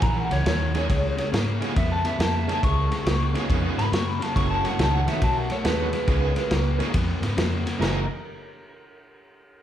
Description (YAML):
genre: electric blues shuffle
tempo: 139 BPM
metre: 4/4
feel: swing 66% on 8ths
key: unclear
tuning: A4 = 441 Hz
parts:
  - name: electric guitar through a small old amp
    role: melody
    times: 0.0-8.1 s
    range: A#4 to C#6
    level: -29 LUFS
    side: equal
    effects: spring reverb, tape echo
  - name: overdriven electric guitar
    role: riff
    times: 0.0-8.0 s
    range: F#2 to D#4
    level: -29 LUFS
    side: left 3 dB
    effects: none
  - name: vintage muted fingered electric bass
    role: bass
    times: 0.0-8.1 s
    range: F#1 to G#2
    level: -26 LUFS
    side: equal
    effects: none
  - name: crunchy breakbeat drum kit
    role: drums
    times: 0.0-7.9 s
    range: crash cymbal, kick drum, ride cymbal, snare drum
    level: -27 LUFS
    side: equal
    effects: none
  - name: bright tonewheel organ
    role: accompaniment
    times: 0.7-8.1 s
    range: G#3 to G#4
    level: -32 LUFS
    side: right 6 dB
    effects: slow rotary speaker, overdrive
room: moderate large studio reverb, RT60 1.3 s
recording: band playing live in one room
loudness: -21 LUFS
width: side -11 dB against mid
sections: 0.0-7.8 A section; 7.8-9.5 B section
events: none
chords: 0.0 F#9; 0.9 C#9; 4.4 F#9; 5.2 B9; 6.1 C#9; 7.8 F#13